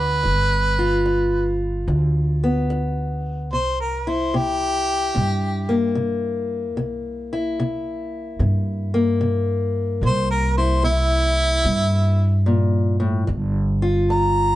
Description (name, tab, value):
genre	acoustic country blues, solo or duo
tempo	74 BPM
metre	4/4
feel	swing 66% on 8ths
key	unclear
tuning	A4 = 440 Hz
part	clear harmonica	melody	0.0-14.6 s	E4 to Bb5	-21 LUFS	equal	none
part	fingerpicked steel-string acoustic guitar	accompaniment	0.0-14.6 s	G2 to F4	-24 LUFS	left 2 dB	none
part	upright bass	bass	0.0-14.6 s	G1 to G2	-21 LUFS	equal	none
room	moderate small room ambience, RT60 0.5 s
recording	nothing above 10.3 kHz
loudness	-18 LUFS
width	side -15 dB against mid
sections	0.0-14.6 A section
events	none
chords	0.0 G7; 3.5 C7; 13.3 G7(no3)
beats	| 0.23 1.05 1.88 2.69 | 3.51 4.33 5.15 5.96 | 6.78 7.59 8.40 9.21 | 10.03 10.84 11.65 12.46 | 13.28 14.10